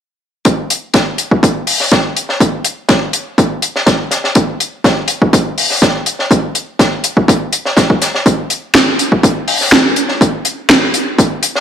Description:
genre	minimal techno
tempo	123 BPM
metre	4/4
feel	straight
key	none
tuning	none
part	compact cocktail drum kit	drums	0.5-11.6 s	hi-hat, snare drum	-15 LUFS	left 2 dB	high-pass filter on hats, studio reverb, high-pass filter on snare, high-pass filter on room
part	electronic kick drum	drums	0.5-11.3 s	none	-12 LUFS	equal	high-pass filter on kick, studio reverb, high-pass filter on room
part	electronic snare drum	drums	8.7-10.8 s	none	-12 LUFS	right 1 dB	overdrive, studio reverb
room	moderate lush hall reverb, RT60 1.9 s, small room ambience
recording	dry, gritty hardware recording, transformer saturation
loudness	-11 LUFS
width	side -9 dB against mid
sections	0.5-11.6 A section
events	none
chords	none

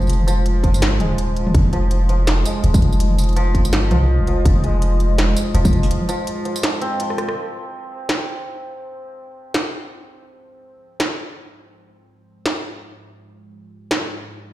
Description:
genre	half-time drum and bass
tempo	165 BPM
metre	4/4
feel	swing 57% on 16ths, half-time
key	F minor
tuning	A4 = 440 Hz
part	dark analog pad	sustained chords	0.0-14.5 s	Ab3 to Eb5	-27 LUFS	equal	chorus, phaser, sidechain pumping
part	santur	arpeggios	0.0-10.8 s	F3 to C4	-27 LUFS	right 1 dB	dub echo
part	long sustained 808-style bass	bass	0.0-5.9 s	Eb1 to C2	-17 LUFS	equal	none
part	industrial drum kit	drums	0.0-14.0 s	hi-hat, rim click, snare drum, tambourine, toms	-23 LUFS	equal	studio reverb
part	electronic kick drum	drums	0.6-5.7 s	none	-18 LUFS	equal	distortion, studio reverb
room	little or no reverb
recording	played on a big sound system in a bare room, stone room reverb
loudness	-16 LUFS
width	side -15 dB against mid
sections	0.0-7.4 A section; 7.4-14.5 B section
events	drop 0.0-7.4; break 5.9-7.4; drum fill 7.1; band accent 7.3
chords	0.0 Fm

